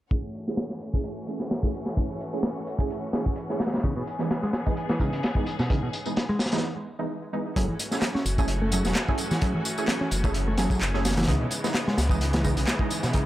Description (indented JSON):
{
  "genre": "breakbeat, breaks",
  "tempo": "129 BPM",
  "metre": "4/4",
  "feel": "swing 54% on 16ths",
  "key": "F# minor",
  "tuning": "A4 = 440 Hz",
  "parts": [
    { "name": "bright studio string section", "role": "sustained chords", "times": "0.1-13.3 s", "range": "C#3 to G#4", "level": "-34 LUFS", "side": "left 1 dB", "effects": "sidechain pumping" },
    { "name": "orchestra-hit-like synth stab", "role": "stabs", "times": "0.1-13.2 s", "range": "E3 to G#4", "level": "-32 LUFS", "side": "right 2 dB", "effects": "built-in reverb, tape echo" },
    { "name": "crunchy breakbeat drum kit", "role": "drums", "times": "0.1-13.3 s", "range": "hi-hat, kick drum, snare drum", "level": "-27 LUFS", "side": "equal", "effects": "none" },
    { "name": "electronic tambourine and handclaps", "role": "drums", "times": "0.1-13.2 s", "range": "none", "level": "-34 LUFS", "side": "left 1 dB", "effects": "tape echo" },
    { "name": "picked electric bass", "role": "riff", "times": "3.8-13.3 s", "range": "B2 to C#4", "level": "-30 LUFS", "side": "equal", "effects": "tube saturation, low-pass filter, tape echo" },
    { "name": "detuned saw bass", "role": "bass", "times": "7.6-12.7 s", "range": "E1 to C#2", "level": "-27 LUFS", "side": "equal", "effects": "tube saturation" }
  ],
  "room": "light reverb",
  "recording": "echo-heavy mix, low-pass filter",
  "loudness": "-24 LUFS",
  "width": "side -14 dB against mid",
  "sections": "0.1-7.6 A section; 7.6-13.3 B section",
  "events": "filter sweep on synth stab 0.1-7.6; filter sweep 0.1-7.6; break 6.6-7.6; filter sweep on picked electric bass 7.6-13.3",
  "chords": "0.1 F#m7; 3.8 C#m7; 7.6 F#m7; 11.3 C#m7"
}